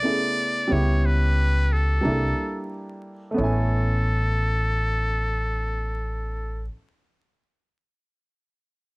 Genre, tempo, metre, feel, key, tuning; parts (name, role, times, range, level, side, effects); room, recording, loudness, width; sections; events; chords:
hip hop, jazz-hop; 90 BPM; 4/4; swing 59% on 16ths; A major; A4 = 439 Hz
trumpet with metal mute; melody; 0.0-6.7 s; A4 to D5; -27 LUFS; equal
warm upright piano; accompaniment; 0.0-6.7 s; C#3 to G#5; -28 LUFS; right 1 dB
upright bass; bass; 0.7-6.7 s; A1 to C#2; -23 LUFS; equal
light reverb; dark, warm production, vinyl crackle; -21 LUFS; side -26 dB against mid
0.0-3.4 A section; 3.4-6.0 B section
0.0 Amaj9; 0.7 C#m7b5; 2.0 C13; 3.4 Amaj9